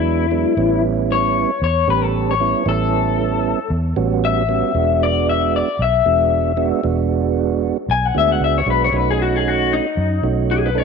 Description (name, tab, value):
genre	straight-eighth soul blues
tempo	115 BPM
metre	4/4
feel	swing 55% on 16ths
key	E mixolydian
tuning	A4 = 439 Hz
part	electric guitar through a small old amp	melody	0.0-10.8 s	D#4 to G#5	-18 LUFS	left 10 dB	wide subtle chorus
part	tonewheel organ	accompaniment	0.0-10.8 s	F#3 to A4	-20 LUFS	right 12 dB	slow rotary speaker, overdrive
part	vintage muted fingered electric bass	bass	0.0-10.8 s	E1 to F#2	-21 LUFS	equal	none
room	moderate echo chamber reverb, RT60 2.4 s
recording	1960s-style stereo with parts hard left and right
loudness	-15 LUFS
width	side -5 dB against mid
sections	0.0-10.8 A section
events	clean electric guitar solo 0.0-10.8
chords	0.0 E7; 0.6 A7; 4.8 E7; 8.9 B7